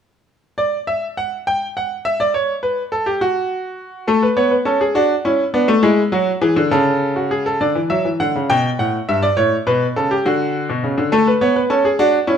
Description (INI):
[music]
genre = classical, baroque-style two-part invention for grand piano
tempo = 68 BPM (dotted quarters)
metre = 6/8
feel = straight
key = D major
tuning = A4 = 440 Hz
[part]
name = bright concert grand piano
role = solo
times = 0.6-12.4 s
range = G2 to G5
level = -15 LUFS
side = equal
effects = none
[sound]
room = wet stone room reverb, RT60 1.1 s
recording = heard from further back in the room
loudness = -15 LUFS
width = side -8 dB against mid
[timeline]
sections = 0.6-7.6 A section; 7.6-12.4 B section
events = none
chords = 0.6 N.C.; 4.1 A; 4.9 D; 5.8 E7; 6.7 A/C#; 7.6 D; 8.5 G; 9.4 A7; 10.2 D; 11.1 A